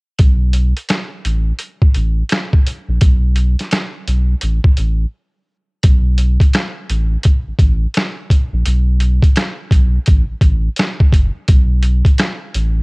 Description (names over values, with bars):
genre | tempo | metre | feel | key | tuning
hip hop, boom-bap hip-hop | 85 BPM | 4/4 | swing 62% on 16ths | unclear | A4 = 440 Hz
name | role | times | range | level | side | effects
sub bass with octave | bass | 0.2-12.8 s | F#1 to B1 | -14 LUFS | equal | none
boom bap sampler-style drum kit | drums | 0.2-12.7 s | hi-hat, kick drum, rim click, snare drum | -12 LUFS | equal | cassette tape
room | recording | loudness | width
little or no reverb | home recording on cassette | -13 LUFS | side -33 dB against mid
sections
0.2-5.8 A section; 5.8-12.8 B section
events
break 5.1-5.8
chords
none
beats
| 0.19 0.90 1.60 2.31 | 3.01 3.72 4.42 5.13 | 5.84 6.54 7.25 7.96 | 8.66 9.37 10.07 10.78 | 11.48 12.19